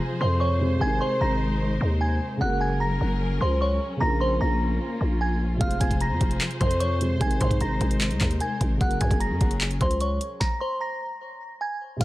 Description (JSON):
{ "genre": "hip hop, trap", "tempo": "150 BPM", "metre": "4/4", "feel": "half-time", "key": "unclear", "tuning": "A4 = 440 Hz", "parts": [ { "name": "dark concert grand piano", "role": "accompaniment", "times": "0.0-12.0 s", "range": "C3 to C5", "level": "-32 LUFS", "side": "right 1 dB", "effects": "low-pass filter" }, { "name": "warm symphonic string section", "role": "sustained chords", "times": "0.0-12.0 s", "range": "F3 to C5", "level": "-32 LUFS", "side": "left 2 dB", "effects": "none" }, { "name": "glassy synth bell", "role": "melody", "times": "0.2-12.0 s", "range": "C5 to Bb6", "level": "-28 LUFS", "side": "right 1 dB", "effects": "chorus, low-pass filter, digital delay" }, { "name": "growling 808-style bass", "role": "bass", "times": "0.2-12.0 s", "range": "F1 to Ab2", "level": "-25 LUFS", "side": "equal", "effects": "none" }, { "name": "trap drum kit", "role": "drums", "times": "5.6-12.0 s", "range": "crash cymbal, handclaps, hi-hat, kick drum, snare drum", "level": "-24 LUFS", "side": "equal", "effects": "overdrive" } ], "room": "digital ambience", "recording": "none", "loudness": "-22 LUFS", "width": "side -17 dB against mid", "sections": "0.0-12.0 A section", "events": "stop 10.4-12.0", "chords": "0.0 Fm; 0.8 Abadd9; 2.4 Gbadd9; 4.0 Bbm; 5.6 Fm; 7.2 Abadd9; 8.8 Gbadd9; 10.4 Abadd9/C", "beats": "0.01 0.41 | 0.81 1.21 1.61 2.01 | 2.41 2.81 3.21 3.61 | 4.01 4.41 4.81 5.21 | 5.61 6.01 6.41 6.81 | 7.21 7.61 8.01 8.41 | 8.81 9.21 9.61 10.01 | 10.41 10.81 11.21 11.61 | 12.01" }